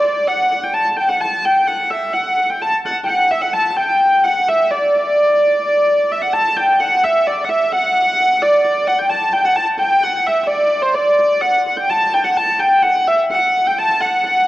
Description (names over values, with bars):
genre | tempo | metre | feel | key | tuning
medieval | 129 BPM | 3/4 | straight | D major | A4 = 440 Hz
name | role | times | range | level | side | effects
dark hurdy-gurdy | solo | 0.0-14.5 s | C5 to A5 | -13 LUFS | equal | none
room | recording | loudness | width
moderate concert hall reverb, RT60 2.2 s | worn, warbling old tape, cassette tape, warbly pitch drift | -13 LUFS | side -16 dB against mid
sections
0.0-6.3 A section; 6.3-14.5 A section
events
none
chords
none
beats
0.31 | 0.77 1.24 1.70 | 2.16 2.63 3.09 | 3.56 4.02 4.49 | 4.95 5.41 5.88 | 6.34 6.81 7.27 | 7.73 8.20 8.66 | 9.13 9.59 10.05 | 10.52 10.98 11.45 | 11.91 12.38 12.84 | 13.30 13.77 14.23